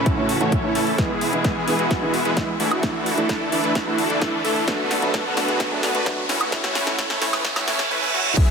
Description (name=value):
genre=EDM, festival progressive house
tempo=130 BPM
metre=4/4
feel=straight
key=A major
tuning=A4 = 440 Hz
part: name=dark grand piano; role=accompaniment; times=0.0-7.7 s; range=A2 to F#4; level=-27 LUFS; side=right 2 dB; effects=sidechain pumping, dub echo
part: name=bright studio string section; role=sustained chords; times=0.0-8.5 s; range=B2 to B5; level=-29 LUFS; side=left 3 dB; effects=sidechain pumping
part: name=supersaw chords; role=riff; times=0.0-8.5 s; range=E3 to D5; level=-23 LUFS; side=right 1 dB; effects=sidechain pumping, low-pass filter, dub echo
part: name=riser, reverse cymbal and sub drop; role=sound effects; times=0.0-8.5 s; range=none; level=-28 LUFS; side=right 1 dB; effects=none
part: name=big-room dance drum kit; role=drums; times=0.1-8.5 s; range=crash cymbal, hi-hat, snare drum, woodblock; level=-27 LUFS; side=left 1 dB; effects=none
part: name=electronic kick drum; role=drums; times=0.1-8.5 s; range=none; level=-23 LUFS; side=equal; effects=overdrive
room=moderate digital room reverb, RT60 1.4 s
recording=high-pass filter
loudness=-19 LUFS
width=side -6 dB against mid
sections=0.0-8.4 A section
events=build-up 0.0-8.4; riser 0.0-7.9; filter sweep on supersaw synth 0.0-8.4; filter sweep 0.0-8.4; drum fill 1.0-7.9; reverse cymbal 7.4-8.4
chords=0.0 A; 1.0 E; 2.8 Dsus2; 4.7 Bm7; 6.5 A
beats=0.06 0.52 | 0.98 1.45 1.91 2.37 | 2.83 3.29 3.75 4.22 | 4.68 5.14 5.60 6.06 | 6.52 6.99 7.45 7.91 | 8.37